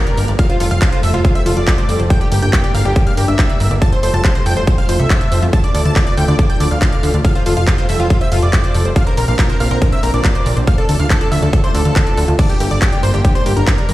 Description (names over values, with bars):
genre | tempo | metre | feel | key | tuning
uplifting trance | 140 BPM | 4/4 | straight | F major | A4 = 440 Hz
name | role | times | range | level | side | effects
supersaw stab | melody | 0.0-13.9 s | F4 to A5 | -22 LUFS | equal | cassette tape, sidechain pumping, dub echo
plucky unison lead | second line | 0.0-13.9 s | F5 to A6 | -27 LUFS | left 1 dB | sidechain pumping, dub echo
analog string pad | sustained chords | 0.0-13.9 s | D3 to C4 | -24 LUFS | right 1 dB | ensemble chorus, sidechain pumping
wide unison pluck | arpeggios | 0.0-13.9 s | D4 to A5 | -25 LUFS | left 1 dB | sidechain pumping, dub echo
big-room dance drum kit | drums | 0.1-13.9 s | crash cymbal, handclaps, hi-hat | -24 LUFS | equal | overdrive
plucky analog bass | bass | 0.2-13.9 s | F1 to F2 | -15 LUFS | equal | sidechain pumping
electronic kick drum | drums | 0.4-13.8 s | none | -14 LUFS | equal | overdrive
room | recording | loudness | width
little or no reverb | played on a big sound system in a bare room, stone room reverb | -12 LUFS | side -16 dB against mid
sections
0.0-13.9 A section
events
none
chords
0.4 Fadd9; 2.1 Gm; 3.8 Fadd9; 5.5 Dm; 7.2 Fadd9; 9.0 Bbadd9; 10.7 Dm; 12.4 Gm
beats
| 0.39 0.82 1.25 1.68 | 2.10 2.53 2.96 3.39 | 3.82 4.25 4.67 5.10 | 5.53 5.96 6.39 6.82 | 7.25 7.67 8.10 8.53 | 8.96 9.39 9.82 10.25 | 10.68 11.10 11.53 11.96 | 12.39 12.82 13.25 13.68